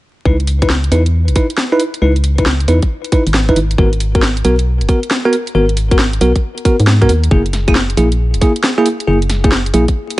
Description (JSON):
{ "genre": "UK garage, two-step garage", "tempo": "136 BPM", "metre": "4/4", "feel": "swing 66% on 16ths", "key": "C# dorian", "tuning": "A4 = 440 Hz", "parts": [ { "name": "bell-like tine electric piano", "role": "stabs", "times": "0.3-9.8 s", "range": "A#3 to B4", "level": "-16 LUFS", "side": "equal", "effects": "auto-pan, ping-pong delay" }, { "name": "organ-like FM bass", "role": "bass", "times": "0.3-9.9 s", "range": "E1 to G#2", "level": "-13 LUFS", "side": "equal", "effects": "tube saturation" }, { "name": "electronic kick drum", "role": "drums", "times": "0.3-9.9 s", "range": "none", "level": "-14 LUFS", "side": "equal", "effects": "overdrive, studio reverb" }, { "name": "garage drum kit", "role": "drums", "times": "0.4-10.2 s", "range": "claves, hi-hat, snare drum", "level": "-18 LUFS", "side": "equal", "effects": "overdrive, studio reverb" } ], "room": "little or no reverb", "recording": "vinyl crackle, nothing above 10.9 kHz", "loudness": "-11 LUFS", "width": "side -18 dB against mid", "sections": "0.3-10.2 A section", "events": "none", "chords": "0.3 C#m7; 3.8 G#m7; 7.3 F#7", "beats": "| 0.26 0.70 1.14 1.58 | 2.02 2.46 2.90 3.34 | 3.78 4.22 4.67 5.11 | 5.55 5.99 6.43 6.87 | 7.31 7.75 8.20 8.64 | 9.08 9.52 9.96" }